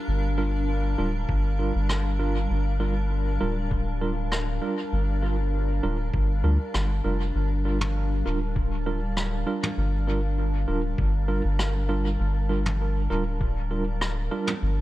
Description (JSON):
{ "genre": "ambient dub", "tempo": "99 BPM", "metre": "4/4", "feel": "straight", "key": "G minor", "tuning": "A4 = 438 Hz", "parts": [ { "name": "granular cloud pad", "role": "sustained chords", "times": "0.0-14.8 s", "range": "G3 to A5", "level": "-33 LUFS", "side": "left 1 dB", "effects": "built-in reverb" }, { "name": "soft dub sub bass", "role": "bass", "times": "0.1-14.8 s", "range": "D1 to D2", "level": "-25 LUFS", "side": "equal", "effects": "none" }, { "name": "tine electric piano", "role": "stabs", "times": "0.4-14.5 s", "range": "G3 to Bb4", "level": "-31 LUFS", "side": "right 3 dB", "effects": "medium tremolo, dub echo" }, { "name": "electronic kick drum", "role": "drums", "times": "1.3-13.5 s", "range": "none", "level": "-27 LUFS", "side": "equal", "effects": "none" }, { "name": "vintage brush drum kit", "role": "drums", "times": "1.9-14.6 s", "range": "rim click, toms", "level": "-33 LUFS", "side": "equal", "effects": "dub echo" } ], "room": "studio reverb", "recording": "none", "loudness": "-23 LUFS", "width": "side -16 dB against mid", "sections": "0.0-14.8 A section", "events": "none", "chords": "0.0 Gm7" }